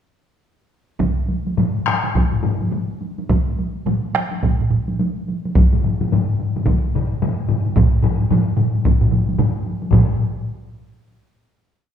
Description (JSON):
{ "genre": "japanese traditional, taiko drum ensemble", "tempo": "104-118 BPM", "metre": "4/4", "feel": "swing 60% on 16ths", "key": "none", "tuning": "none", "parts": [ { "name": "taiko ensemble", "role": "percussion", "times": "1.0-10.2 s", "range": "none", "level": "-23 LUFS", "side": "right 1 dB", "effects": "none" }, { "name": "taiko ensemble", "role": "percussion", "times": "1.0-10.2 s", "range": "none", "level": "-19 LUFS", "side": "right 1 dB", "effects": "none" }, { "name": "taiko ensemble", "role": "percussion", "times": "1.6-10.4 s", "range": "none", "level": "-20 LUFS", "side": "left 4 dB", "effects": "none" }, { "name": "taiko ensemble", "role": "percussion", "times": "3.9-10.4 s", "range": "none", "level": "-20 LUFS", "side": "right 3 dB", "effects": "none" } ], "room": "wet recital hall reverb, RT60 1.3 s", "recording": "recorded in a church or concert hall", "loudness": "-16 LUFS", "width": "side -9 dB against mid", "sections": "1.0-9.9 A section; 9.9-11.9 final hit", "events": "speeding up 1.0-11.9", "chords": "none", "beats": "| 1.00 1.58 2.15 2.73 | 3.30 3.87 4.43 5.00 | 5.56 6.12 6.67 7.22 | 7.77 8.31 8.85 9.39 | 9.92" }